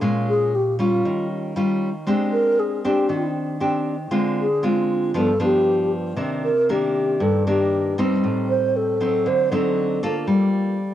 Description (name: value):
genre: bossa nova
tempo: 117 BPM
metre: 4/4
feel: straight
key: G minor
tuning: A4 = 440 Hz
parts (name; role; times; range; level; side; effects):
- nylon-string guitar; accompaniment; 0.0-10.9 s; G2 to A4; -21 LUFS; equal; cassette tape
- mellow wooden-headed alto flute; melody; 0.3-10.0 s; F4 to C5; -20 LUFS; equal; cassette tape
room: light reverb, small room ambience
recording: home recording on cassette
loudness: -18 LUFS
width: side -11 dB against mid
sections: 0.0-10.9 A section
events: alto flute solo 0.0-10.9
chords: 0.0 Bbm7; 1.0 Eb9; 2.1 Abmaj7#11; 4.1 Dm7b5; 5.2 G7; 6.2 Cm9; 8.2 Am7b5; 9.3 D7b9; 10.3 Gm9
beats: | 0.01 0.53 1.04 1.55 | 2.07 2.58 3.10 3.61 | 4.12 4.64 5.15 5.66 | 6.18 6.69 7.20 7.72 | 8.23 8.74 9.26 9.77 | 10.28 10.80